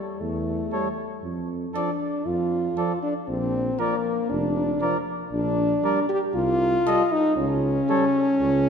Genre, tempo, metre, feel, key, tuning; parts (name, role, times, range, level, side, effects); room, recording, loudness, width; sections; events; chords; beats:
classical, brass quintet; 117 BPM; 4/4; straight; A4 = 438 Hz
mellow French horn; accompaniment; 0.0-8.7 s; G3 to G4; -23 LUFS; left 1 dB
mellow bass trombone; bass; 0.2-8.7 s; F1 to F2; -29 LUFS; right 2 dB
warm trumpet; melody; 0.7-8.1 s; C#5 to Eb5; -32 LUFS; left 5 dB
warm flugelhorn; second line; 0.7-8.1 s; A4 to Bb4; -33 LUFS; right 5 dB
mellow euphonium; accompaniment; 0.7-8.0 s; F3 to G3; -35 LUFS; right 4 dB
wet church reverb, RT60 2.8 s; minimal, uncompressed stereo recording; -22 LUFS; side -7 dB against mid
0.0-8.7 A section
0.0 A7(no3)/E; 1.2 Dm/F; 3.3 Bb; 5.3 Gm/Bb; 6.3 Am7b5/C (rootless); 7.4 A7/C# (rootless)
0.21 0.72 | 1.24 1.75 2.26 2.77 | 3.28 3.79 4.30 4.81 | 5.33 5.84 6.35 6.86 | 7.37 7.89 8.40